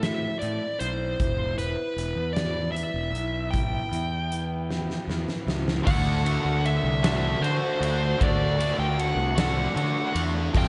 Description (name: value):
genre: quiet-loud alternative rock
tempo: 51 BPM (dotted quarters)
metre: 6/8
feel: straight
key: unclear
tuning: A4 = 438 Hz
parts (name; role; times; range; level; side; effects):
- smooth overdriven lead guitar; melody; 0.0-10.7 s; B4 to G5; -32 LUFS; equal; none
- picked old ladder-braced acoustic guitar; arpeggios; 0.0-5.8 s; E3 to E4; -39 LUFS; equal; slapback echo
- fuzz fingered electric bass; bass; 0.0-10.7 s; E1 to D3; -31 LUFS; equal; overdrive
- big rock drum kit; drums; 0.0-10.7 s; crash cymbal, hi-hat, kick drum, ride cymbal, snare drum; -31 LUFS; equal; none
- overdriven semi-hollow guitar; riff; 5.8-10.7 s; D3 to F#4; -30 LUFS; equal; none
room: moderate concert hall reverb, RT60 2.0 s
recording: big arena sound, nothing above 11.0 kHz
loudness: -26 LUFS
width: mono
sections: 0.0-5.9 A section; 5.9-10.7 B section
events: drum fill 4.7-5.9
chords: 0.0 Am; 1.2 Em; 5.9 D